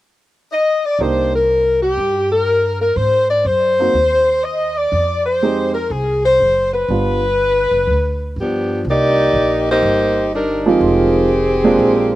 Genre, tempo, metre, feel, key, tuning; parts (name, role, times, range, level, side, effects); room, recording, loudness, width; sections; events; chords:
jazz, big band swing; 122 BPM; 4/4; swing 68% on 8ths; C minor; A4 = 440 Hz
dark saxophone section; melody; 0.5-12.2 s; Eb3 to Eb5; -14 LUFS; left 1 dB; slapback echo
warm upright piano; accompaniment; 1.0-7.2, 10.7-12.2 s; F3 to G4; -16 LUFS; right 4 dB; slapback echo
upright bass; bass; 1.0-12.2 s; F1 to Ab2; -22 LUFS; right 1 dB
little or no reverb; recorded outdoors, with no room sound; -13 LUFS; side -15 dB against mid
0.0-1.0 A section; 1.0-8.9 B section; 8.9-12.2 C section
0.0 N.C.; 1.0 Cm7; 3.0 Ab7; 4.9 Fm7; 6.9 G7; 8.9 Cm11; 10.8 Fm9